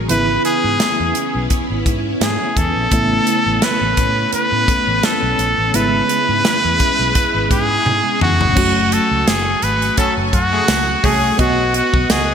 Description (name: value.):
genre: 1980s-style pop.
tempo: 85 BPM.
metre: 4/4.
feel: swing 55% on 16ths.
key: unclear.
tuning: A4 = 441 Hz.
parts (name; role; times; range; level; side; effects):
mellow FM electric piano; accompaniment; 0.0-12.3 s; C#3 to D#5; -23 LUFS; right 1 dB; chorus, tremolo.
string machine, violins; sustained chords; 0.0-12.3 s; G#3 to D#6; -23 LUFS; left 1 dB; ensemble chorus.
vintage muted fingered electric bass; bass; 0.0-12.3 s; F#1 to A2; -22 LUFS; equal; none.
trumpet with straight mute; melody; 0.1-12.3 s; F#4 to B4; -17 LUFS; equal; ping-pong delay.
modern studio drum kit; drums; 0.1-12.3 s; crash cymbal, hi-hat, kick drum, snare drum, tambourine, toms; -19 LUFS; equal; gated reverb.
funky polysynth comp; stabs; 10.0-11.3 s; C#3 to A4; -22 LUFS; right 1 dB; chorus.
room: wet lush hall reverb, RT60 1.8 s, small room ambience.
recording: bright 1980s-style digital production.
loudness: -13 LUFS.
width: side -7 dB against mid.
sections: 0.0-8.6 A section; 8.6-12.3 B section.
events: drum fill 7.9-8.6.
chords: 0.1 E6/G#; 2.9 Aadd9; 5.7 E6/G#; 8.6 F#madd9; 11.4 B.